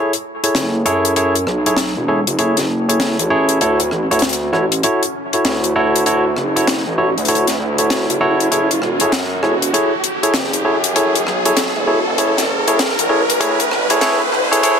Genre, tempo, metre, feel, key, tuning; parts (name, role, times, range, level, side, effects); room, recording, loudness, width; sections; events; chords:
glitch hop; 98 BPM; 4/4; swing 63% on 16ths; F# minor; A4 = 440 Hz
barky tine electric piano; stabs; 0.0-14.8 s; E4 to C#5; -16 LUFS; equal; vintage 12-bit sampler grit, dub echo
riser; sound effects; 0.1-14.8 s; -22 LUFS; right 1 dB
deep reggae drum kit; drums; 0.1-14.8 s; hi-hat, rim click, snare drum; -19 LUFS; left 3 dB; high-pass filter on hats, high-pass filter on snare, high-pass filter on room
gritty driven synth bass; bass; 0.6-14.6 s; E1 to F#2; -21 LUFS; equal; overdrive, high-pass filter
moderate plate reverb, RT60 1.3 s, small room reverb; dense, heavily limited modern master, high-pass filter; -14 LUFS; side -7 dB against mid
0.0-14.8 A section
build-up 0.0-14.8; riser 0.1-14.8
0.0 F#m7; 3.6 Dmaj7; 8.5 F#m7; 13.4 Dmaj7(no3)